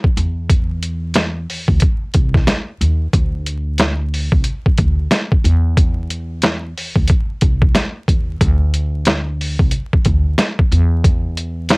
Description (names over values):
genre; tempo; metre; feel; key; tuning
hip hop, boom-bap hip-hop; 91 BPM; 4/4; swing 59% on 16ths; unclear; A4 = 441 Hz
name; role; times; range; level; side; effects
boom bap sampler-style drum kit; drums; 0.0-11.8 s; hi-hat, kick drum, snare drum; -15 LUFS; equal; cassette tape
upright bass; bass; 0.2-11.8 s; C2 to E2; -18 LUFS; equal; none
room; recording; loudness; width
little or no reverb; home recording on cassette, vinyl crackle; -14 LUFS; side -33 dB against mid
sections
0.0-11.8 A section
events
none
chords
none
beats
| 0.50 1.16 1.81 2.48 | 3.13 3.79 4.45 5.11 | 5.77 6.43 7.09 7.75 | 8.41 9.07 9.73 10.39 | 11.05 11.71